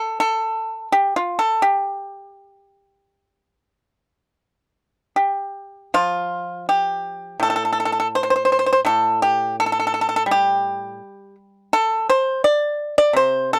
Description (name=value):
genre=chinese traditional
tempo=74-89 BPM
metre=4/4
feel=rubato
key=G shang mode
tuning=A4 = 444 Hz
part: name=pipa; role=solo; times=0.0-13.6 s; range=A2 to D5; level=-20 LUFS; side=equal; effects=none
room=little or no reverb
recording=dry, close 1970s-style studio recording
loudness=-20 LUFS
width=mono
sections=0.0-6.0 A section; 6.0-13.6 B section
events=none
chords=none